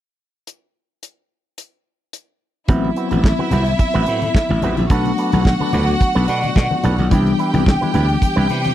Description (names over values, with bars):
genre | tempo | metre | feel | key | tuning
disco | 108 BPM | 4/4 | straight | A dorian | A4 = 440 Hz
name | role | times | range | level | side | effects
modern studio drum kit | drums | 0.5-8.7 s | handclaps, hi-hat, kick drum, snare drum | -16 LUFS | equal | none
rich studio violin section | second line | 2.7-8.7 s | E4 to G5 | -22 LUFS | right 1 dB | none
electric guitar with an envelope filter | accompaniment | 2.7-8.7 s | C4 to B4 | -26 LUFS | right 7 dB | none
mellow tine electric piano | accompaniment | 2.7-8.7 s | E3 to F#5 | -22 LUFS | left 4 dB | medium stereo tremolo
slap bass | bass | 2.7-8.7 s | A1 to C3 | -18 LUFS | right 1 dB | none
congas | percussion | 2.7-8.7 s | none | -26 LUFS | left 4 dB | none
room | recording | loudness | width
little or no reverb | dry, close 1970s-style studio recording | -14 LUFS | side -12 dB against mid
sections
0.5-2.7 A section; 2.7-8.7 B section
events
tine electric piano fill 6.0-7.1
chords
0.5 N.C.; 2.7 Am69; 4.9 Bm7; 7.1 Cmaj9